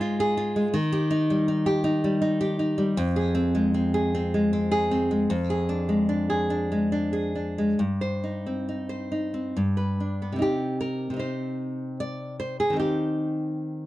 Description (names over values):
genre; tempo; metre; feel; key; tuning
romantic piece for solo classical guitar; 67-82 BPM; 3/4; rubato; C minor; A4 = 438 Hz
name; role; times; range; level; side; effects
nylon-string guitar; solo; 0.0-13.9 s; F2 to D5; -23 LUFS; equal; none
room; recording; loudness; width
light reverb; dark, warm production; -23 LUFS; side -16 dB against mid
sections
0.0-10.4 A section; 10.4-13.9 B section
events
none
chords
0.0 Fm/Ab; 0.7 Eb; 3.0 Fm; 5.3 Ddim/F; 7.8 Cm/G; 9.6 G; 10.4 Cm; 12.8 Cm/Eb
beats
| 0.73 1.48 2.22 | 2.97 3.74 4.52 | 5.30 6.09 6.92 | 7.78 8.67 9.56 | 10.41 11.20 12.00 | 12.79 13.58